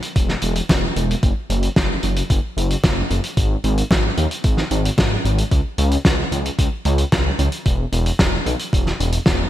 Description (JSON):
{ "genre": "synthwave", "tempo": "112 BPM", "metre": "4/4", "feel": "straight", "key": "unclear", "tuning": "A4 = 441 Hz", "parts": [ { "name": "loose indie drum kit", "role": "drums", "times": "0.0-9.4 s", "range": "hi-hat, snare drum", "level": "-21 LUFS", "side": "equal", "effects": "gated reverb" }, { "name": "wide detuned saw bass", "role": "bass", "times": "0.2-9.5 s", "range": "E1 to D#2", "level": "-20 LUFS", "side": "equal", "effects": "chorus, sidechain pumping" }, { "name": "electronic kick drum", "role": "drums", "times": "0.2-9.4 s", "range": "none", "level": "-20 LUFS", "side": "equal", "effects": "overdrive" } ], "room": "light reverb", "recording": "bright 1980s-style digital production", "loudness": "-16 LUFS", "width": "side -13 dB against mid", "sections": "0.0-9.5 A section", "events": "none", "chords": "none", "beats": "0.16 0.69 | 1.23 1.76 2.30 2.84 | 3.37 3.91 4.44 4.98 | 5.51 6.05 6.59 7.12 | 7.66 8.19 8.73 9.27" }